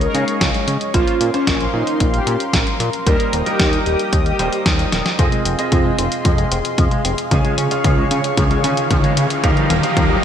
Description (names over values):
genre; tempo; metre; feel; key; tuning
italo disco; 113 BPM; 4/4; straight; unclear; A4 = 439 Hz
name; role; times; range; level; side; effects
analog synth brass; melody; 0.0-4.6 s; Db4 to Bb4; -22 LUFS; equal; chorus, cassette tape, ping-pong delay
warm analog pad; sustained chords; 0.0-10.2 s; Ab3 to Eb6; -23 LUFS; equal; chorus
clear grand piano; stabs; 0.0-10.2 s; G3 to Ab5; -23 LUFS; right 2 dB; analog chorus, low-pass filter, ping-pong delay
fat analog bass; bass; 0.0-10.2 s; Eb1 to Db3; -22 LUFS; equal; none
clean 12-bit digital drum machine; drums; 0.0-10.1 s; hi-hat, snare drum, toms; -21 LUFS; left 1 dB; gated reverb
electronic kick drum; drums; 0.4-10.1 s; none; -19 LUFS; equal; none
electric guitar with an envelope filter; arpeggios; 5.2-10.2 s; F3 to Db4; -26 LUFS; left 4 dB; low-pass filter, ping-pong delay
riser; sound effects; 6.7-10.2 s; none; -26 LUFS; right 2 dB; none
room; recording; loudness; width
moderate lush hall reverb, RT60 1.7 s; bright 1980s-style digital production; -14 LUFS; side -9 dB against mid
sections
0.0-5.2 A section; 5.2-10.2 B section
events
drum fill 4.9, 5.2-10.2; filter sweep on clean electric guitar 5.2-10.2; filter sweep on grand piano 5.2-10.2; riser 6.7-10.2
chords
0.0 Dbsus2; 0.9 Bbmadd9; 3.1 Eb; 5.2 Fm7; 7.3 Db; 9.4 Ebadd9